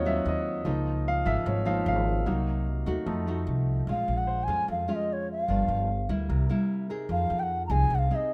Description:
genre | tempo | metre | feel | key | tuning
bossa nova | 149 BPM | 4/4 | straight | Db major, Bb minor from 3.9 s | A4 = 440 Hz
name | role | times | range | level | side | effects
clear baby grand piano | accompaniment | 0.0-8.3 s | F3 to Gb5 | -33 LUFS | equal | none
nylon-string guitar | accompaniment | 0.0-8.3 s | F2 to Ab4 | -35 LUFS | equal | none
upright bass | bass | 0.0-8.1 s | G1 to F2 | -31 LUFS | equal | none
bass bansuri | melody | 3.9-8.3 s | Db5 to Bb5 | -31 LUFS | equal | none
room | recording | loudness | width
light reverb | none | -28 LUFS | mono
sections
0.0-3.9 A section; 3.9-8.3 B section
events
grand piano solo 0.0-3.9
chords
0.0 Ab13 (rootless); 0.7 Db69; 2.3 Cm7b5; 3.1 F7b9; 3.9 Bbm7; 5.5 Gm7; 6.3 C7; 7.1 Fm7

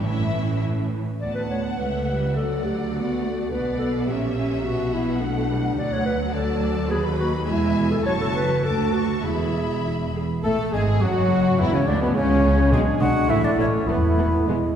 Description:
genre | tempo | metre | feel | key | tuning
quick classical-period movement for symphony orchestra | 97-107 BPM | 2/4 | rubato | D major | A4 = 440 Hz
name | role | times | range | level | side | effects
rich studio violin section | melody | 0.0-14.6 s | A3 to D6 | -35 LUFS | left 4 dB | none
warm studio violin section | second line | 0.0-14.6 s | G#3 to A5 | -32 LUFS | left 2 dB | none
rich studio viola section | accompaniment | 0.0-14.6 s | C#3 to G#4 | -28 LUFS | equal | none
clear studio double bass section | bass | 0.0-14.6 s | E1 to D#2 | -26 LUFS | right 2 dB | none
rich studio cello section | bass | 0.0-14.6 s | C#2 to B2 | -28 LUFS | right 2 dB | none
warm clarinet | second line | 1.2-14.6 s | B3 to D5 | -27 LUFS | left 1 dB | none
mellow cor anglais | second line | 10.4-14.5 s | B3 to A4 | -30 LUFS | right 1 dB | none
silver concert flute | second line | 10.4-14.5 s | B4 to A5 | -28 LUFS | equal | none
warm bassoon | accompaniment | 10.4-14.8 s | B2 to A3 | -28 LUFS | right 2 dB | none
mellow French horn section | sustained chords | 10.4-14.8 s | B2 to E4 | -26 LUFS | left 2 dB | none
timpani | percussion | 12.7-14.4 s | E2 to B2 | -25 LUFS | equal | none
room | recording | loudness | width
wet concert hall reverb, RT60 2.3 s | heard from further back in the room | -20 LUFS | side -8 dB against mid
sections
0.0-1.2 A section; 1.2-10.4 A section; 10.4-14.8 B section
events
none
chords
0.0 A; 1.2 D; 1.8 A7/C#; 2.4 D; 3.5 Bm; 4.1 A#dim7; 4.7 Bm; 5.8 D; 6.9 B/D#; 7.5 E; 8.1 F#m; 8.6 D; 9.2 E; 10.4 F#madd9; 11.6 E5; 12.2 N.C.; 12.7 G#dim/B; 13.3 A; 13.9 Esus4

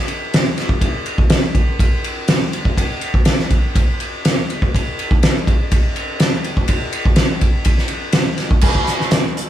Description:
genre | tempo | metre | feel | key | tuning
rock | 122 BPM | 4/4 | straight | none | none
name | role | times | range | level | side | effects
loose indie drum kit | drums | 0.1-9.5 s | crash cymbal, hi-hat, kick drum, ride cymbal, snare drum | -14 LUFS | equal | none
room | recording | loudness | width
moderate plate reverb, RT60 1.3 s | none | -14 LUFS | side -12 dB against mid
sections
0.0-8.6 A section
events
none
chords
none

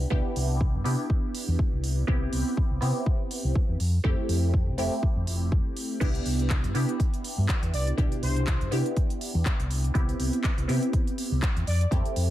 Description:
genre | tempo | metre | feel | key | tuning
filtered disco house | 122 BPM | 4/4 | swing 56% on 16ths | C major | A4 = 440 Hz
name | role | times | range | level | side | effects
funky polysynth comp | accompaniment | 0.0-12.3 s | B2 to G4 | -31 LUFS | right 1 dB | chorus, phaser, sidechain pumping, low-pass filter
fingered electric bass | bass | 0.0-12.3 s | F1 to C3 | -26 LUFS | equal | sidechain pumping, low-pass filter
electronic kick drum | drums | 0.1-12.0 s | none | -26 LUFS | equal | none
house drum kit | drums | 0.4-12.3 s | crash cymbal, handclaps, hi-hat | -36 LUFS | equal | sidechain pumping on hats, sidechain pumping on cymbals
analog synth brass | melody | 7.7-8.7, 11.7-11.8 s | C5 to D5 | -36 LUFS | equal | chorus, sidechain pumping, low-pass filter
room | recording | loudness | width
digital ambience | none | -24 LUFS | side -14 dB against mid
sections
0.0-12.3 A section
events
none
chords
0.0 Cmaj7; 3.8 Fmaj7; 6.0 Cmaj7; 11.7 Fmaj7

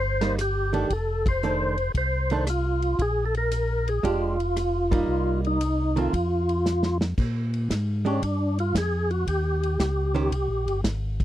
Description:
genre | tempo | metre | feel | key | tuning
soul jazz organ trio | 115 BPM | 4/4 | swing 68% on 8ths | Bb mixolydian | A4 = 439 Hz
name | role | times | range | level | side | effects
percussive tonewheel organ | melody | 0.0-10.8 s | Db4 to C5 | -26 LUFS | equal | slow rotary speaker, overdrive, chorus vibrato
mellow tonewheel organ | bass | 0.0-11.2 s | F1 to Bb2 | -26 LUFS | equal | overdrive, chorus vibrato, slow rotary speaker
archtop guitar, miked and amplified | accompaniment | 0.2-10.3 s | Eb3 to C5 | -26 LUFS | right 5 dB | none
warm soul drum kit | drums | 0.2-11.2 s | crash cymbal, hi-hat, kick drum, ride cymbal, rim click, snare drum | -29 LUFS | equal | none
room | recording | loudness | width
little or no reverb | dry, close 1970s-style studio recording | -22 LUFS | side -13 dB against mid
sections
0.0-7.2 A section; 7.2-11.2 B section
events
band accent 1.2, 4.8; drum fill 6.7-7.2; tonewheel organ solo 7.2-11.2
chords
0.0 Cm7; 0.9 F6; 3.0 Bb6; 5.1 Cm7; 6.1 N.C.; 7.2 Bb6; 9.3 Eb6

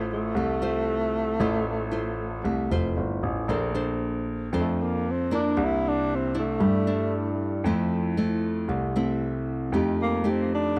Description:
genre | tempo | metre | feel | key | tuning
bossa nova | 115 BPM | 4/4 | straight | F major | A4 = 440 Hz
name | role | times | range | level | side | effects
breathy tenor saxophone | melody | 0.0-10.8 s | A3 to E4 | -30 LUFS | equal | tape echo
nylon-string guitar | accompaniment | 0.0-10.8 s | C3 to C5 | -30 LUFS | equal | none
warm grand piano | bass | 0.0-10.8 s | F1 to G2 | -31 LUFS | equal | none
room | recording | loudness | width
light reverb | dry, close 1970s-style studio recording | -26 LUFS | mono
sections
0.0-3.5 A section; 3.5-10.8 B section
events
tenor saxophone solo 3.5-10.8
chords
0.0 Fmaj7/A; 3.5 Bbmaj9; 5.6 C9; 7.7 Fmaj7; 9.7 F9

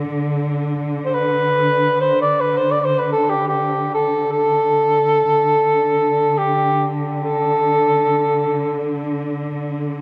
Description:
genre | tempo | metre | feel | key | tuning
caucasian folk, Caucasian lament | free time | none | none | unclear | A4 = 440 Hz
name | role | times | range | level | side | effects
warm studio cello section | drone | 0.0-10.0 s | D3 | -25 LUFS | equal | none
mellow cor anglais | melody | 1.1-9.0 s | G4 to D5 | -18 LUFS | equal | none
room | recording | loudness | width
wet church reverb, RT60 3.3 s | none | -18 LUFS | mono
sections
0.0-10.0 A section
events
none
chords
none

